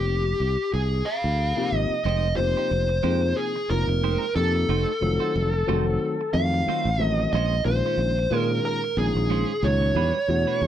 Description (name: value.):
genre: jazz.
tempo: 91 BPM.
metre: 4/4.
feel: swing 55% on 16ths.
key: unclear.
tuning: A4 = 439 Hz.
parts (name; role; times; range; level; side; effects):
dark smooth lead guitar; melody; 0.0-10.7 s; G4 to F5; -25 LUFS; equal; overdrive.
dark grand piano; accompaniment; 0.0-10.7 s; Bb2 to Ab4; -28 LUFS; left 4 dB; none.
fingered electric bass; bass; 0.0-10.7 s; F1 to Bb2; -24 LUFS; right 1 dB; none.
clean electric guitar; stabs; 2.1-10.7 s; G3 to C5; -33 LUFS; right 15 dB; wide subtle chorus, tape echo.
room: light reverb.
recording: dry, close 1970s-style studio recording.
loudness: -21 LUFS.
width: side -10 dB against mid.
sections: 0.0-2.1 A section; 2.1-10.7 B section.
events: none.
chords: 0.0 Fm9; 4.7 F7b9; 7.3 Bbm9; 10.0 Em9.